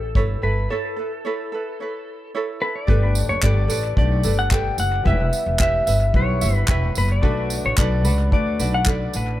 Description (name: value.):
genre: acoustic pop.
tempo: 110 BPM.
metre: 4/4.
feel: straight.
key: unclear.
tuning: A4 = 441 Hz.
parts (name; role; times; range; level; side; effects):
clean lap steel guitar; melody; 0.0-9.4 s; A4 to G5; -25 LUFS; left 2 dB; dub echo.
ukulele; accompaniment; 0.0-9.4 s; D4 to E5; -28 LUFS; right 6 dB; none.
upright bass; bass; 0.0-9.4 s; E1 to D2; -21 LUFS; equal; none.
unplugged drum kit; drums; 0.2-9.3 s; handclaps, kick drum, tambourine; -22 LUFS; equal; none.
clear concert grand piano; accompaniment; 2.9-9.4 s; G3 to D5; -31 LUFS; left 5 dB; dub echo.
room: small room ambience.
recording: echo-heavy mix.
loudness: -18 LUFS.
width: side -14 dB against mid.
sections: 0.0-2.9 A section; 2.9-9.4 B section.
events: break 0.7-2.9.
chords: 0.0 Aadd9; 2.9 Gadd9; 5.1 Em; 7.2 Bm7.